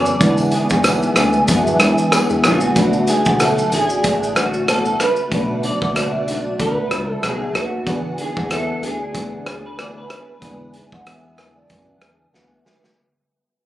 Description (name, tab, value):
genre	indie pop, bedroom pop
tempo	94 BPM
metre	4/4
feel	swing 55% on 16ths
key	unclear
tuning	A4 = 436 Hz
part	electric guitar through a small old amp	melody	0.0-12.6 s	F#4 to D5	-23 LUFS	right 1 dB	ensemble chorus, ping-pong delay
part	picked steel-string acoustic guitar	accompaniment	0.0-13.0 s	B2 to G#4	-22 LUFS	left 1 dB	ensemble chorus, warbly pitch drift
part	reed electric piano	accompaniment	0.0-13.0 s	G#3 to B4	-25 LUFS	right 2 dB	none
part	chorused synth bass	bass	0.0-12.9 s	A1 to F#2	-24 LUFS	equal	none
part	raw garage drum kit	drums	0.1-13.0 s	hi-hat, kick drum, rim click, shaker, snare drum	-20 LUFS	equal	none
part	tambourine	percussion	0.1-2.6 s	none	-33 LUFS	right 2 dB	none
part	vibraphone with soft mallets	second line	2.8-12.8 s	B4 to F#5	-28 LUFS	right 4 dB	lush chorus, ping-pong delay
room	light reverb, small room ambience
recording	recorded on a phone in the room, club reverb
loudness	-15 LUFS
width	side -14 dB against mid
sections	0.0-2.8 A section; 2.8-13.0 B section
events	fade-out 2.8-13.0; drum fill 12.3-13.0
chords	0.0 E7; 2.8 Bm7; 7.9 E7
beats	| 0.21 0.85 1.49 2.12 | 2.76 3.40 4.04 4.67 | 5.31 5.95 6.59 7.23 | 7.87 8.51 9.14 9.78 | 10.42 11.06 11.70 12.34